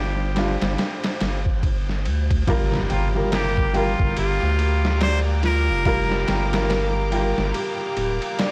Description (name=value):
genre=trip hop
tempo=71 BPM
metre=4/4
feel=swing 60% on 16ths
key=G minor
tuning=A4 = 440 Hz
part: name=trumpet with straight mute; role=melody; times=0.0-6.7 s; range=F4 to C5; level=-30 LUFS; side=equal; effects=tape echo
part: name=felt-muted upright piano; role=accompaniment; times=0.0-8.5 s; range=G3 to Bb4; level=-30 LUFS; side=equal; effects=tremolo, tape echo
part: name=round analog bass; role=bass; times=0.0-8.2 s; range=D1 to D2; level=-26 LUFS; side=equal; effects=none
part: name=flickering grainy texture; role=texture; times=0.1-2.5 s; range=C5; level=-42 LUFS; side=equal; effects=built-in reverb
part: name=trip hop sampler-style drum kit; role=drums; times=0.4-8.5 s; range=kick drum, ride cymbal, snare drum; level=-28 LUFS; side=equal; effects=vintage 12-bit sampler grit
part: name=rich chamber violin section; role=sustained chords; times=2.5-8.5 s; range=G4 to D6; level=-35 LUFS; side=equal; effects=vintage 12-bit sampler grit
part: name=felt-muted upright piano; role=arpeggios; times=2.5-8.5 s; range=F4 to G5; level=-30 LUFS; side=equal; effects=tape echo
part: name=impact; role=sound effects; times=2.5-5.9 s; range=none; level=-32 LUFS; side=equal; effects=none
room=small room ambience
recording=dry, gritty hardware recording, transformer saturation, vinyl crackle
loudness=-22 LUFS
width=mono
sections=0.0-2.5 A section; 2.5-8.5 B section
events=impact 2.5-5.9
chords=0.0 Fsus2; 2.5 Gm7